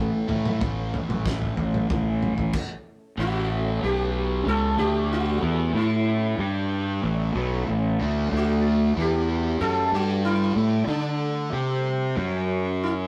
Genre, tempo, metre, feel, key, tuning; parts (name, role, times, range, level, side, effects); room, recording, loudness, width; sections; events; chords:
psychedelic rock; 94 BPM; 4/4; straight; A mixolydian; A4 = 440 Hz
sitar; melody; 0.0-12.9 s; D4 to A4; -31 LUFS; equal
string machine, cellos; sustained chords; 0.0-13.1 s; G3 to D6; -39 LUFS; equal
fuzz guitar; riff; 0.0-13.1 s; A2 to D5; -32 LUFS; equal; distortion, phaser
fuzz fingered electric bass; bass; 0.0-13.1 s; A1 to D3; -27 LUFS; equal; overdrive
cloth-damped thuddy drum kit; drums; 0.3-2.7 s; crash cymbal, kick drum, snare drum, toms; -31 LUFS; equal
moderate small room reverb, RT60 0.5 s; rough rehearsal-room recording; -24 LUFS; mono
0.0-3.2 A section; 3.2-13.1 B section
stop 2.5-3.2
0.0 A; 3.8 B5; 4.5 A; 4.8 D5; 5.4 A; 6.4 G5; 7.0 A; 8.3 D5; 9.0 E5; 9.6 D5; 9.9 G5; 10.6 D5; 11.5 C5; 12.2 F#5